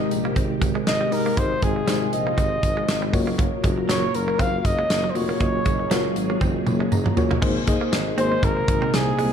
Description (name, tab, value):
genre	1980s-style pop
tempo	119 BPM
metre	4/4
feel	swing 55% on 16ths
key	Ab major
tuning	A4 = 440 Hz
part	warm flugelhorn	melody	0.0-9.3 s	Ab4 to F5	-25 LUFS	equal	tape echo
part	FM electric piano with tremolo	accompaniment	0.0-9.3 s	Ab3 to Bb5	-27 LUFS	left 4 dB	none
part	string machine, cellos	sustained chords	0.0-9.3 s	C3 to Bb4	-28 LUFS	right 1 dB	phaser, ensemble chorus
part	direct-recorded clean electric guitar	riff	0.0-9.3 s	Gb3 to C4	-32 LUFS	right 5 dB	lush chorus, tape echo
part	mellow tuba	bass	0.0-9.3 s	F1 to C2	-29 LUFS	right 1 dB	none
part	modern studio drum kit	drums	0.1-9.3 s	crash cymbal, hi-hat, kick drum, snare drum, tambourine, toms	-24 LUFS	right 1 dB	none
part	tambourine	percussion	0.1-7.3 s	none	-44 LUFS	right 10 dB	none
room	moderate digital room reverb, RT60 1.2 s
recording	dark, warm production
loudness	-19 LUFS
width	side -8 dB against mid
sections	0.0-7.4 A section; 7.4-9.3 B section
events	flugelhorn solo 0.0-7.4; drum fill 6.4-7.4; FM electric piano fill 6.7-7.4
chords	0.0 Abmaj7; 3.1 Gbmaj7; 7.4 Abadd9